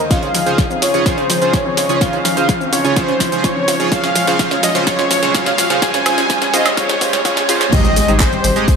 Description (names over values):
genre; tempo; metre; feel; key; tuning
progressive house; 126 BPM; 4/4; straight; unclear; A4 = 440 Hz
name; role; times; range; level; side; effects
soft supersaw; melody; 0.0-8.8 s; C5 to Ab5; -18 LUFS; equal; sidechain pumping, low-pass filter, ping-pong delay
warm analog pad; sustained chords; 0.0-8.8 s; Db2 to Db5; -24 LUFS; left 1 dB; chorus, sidechain pumping
analog pluck; arpeggios; 0.0-8.7 s; F3 to Ab5; -23 LUFS; left 1 dB; chorus, sidechain pumping, ping-pong delay
riser and impact; sound effects; 0.0-8.8 s; none; -24 LUFS; right 1 dB; none
chorused polysynth; stabs; 0.1-8.7 s; Db3 to Eb5; -19 LUFS; right 3 dB; sidechain pumping, ping-pong delay
electronic kick drum; drums; 0.1-8.8 s; none; -17 LUFS; equal; none
pop drum kit; drums; 0.1-8.8 s; crash cymbal, handclaps, hi-hat, shaker, snare drum, woodblock; -19 LUFS; equal; high-pass filter on snare, high-pass filter on hats, high-pass filter on perc, high-pass filter on cymbals, high-pass filter on room
saturated sub bass; bass; 7.7-8.5 s; Ab1; -19 LUFS; equal; sidechain pumping
tambourine and snare drum; drums; 7.7-8.8 s; none; -31 LUFS; left 4 dB; none
room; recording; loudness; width
moderate concert hall reverb, RT60 2.4 s; high-pass filter; -12 LUFS; side -6 dB against mid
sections
0.0-7.7 A section; 7.7-8.8 B section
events
build-up 0.0-7.7; drum fill 0.0-7.7; riser 0.0-7.7; filter sweep on synth pluck 0.0-7.7; filter sweep on supersaw synth 0.0-7.7; drop 7.7-8.8; impact 7.7-8.8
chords
0.1 Dbmaj7; 3.9 Bbm7; 7.7 Abmaj7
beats
| 0.11 0.58 1.06 1.54 | 2.01 2.49 2.96 3.44 | 3.92 4.39 4.87 5.34 | 5.82 6.30 6.77 7.25 | 7.73 8.20 8.68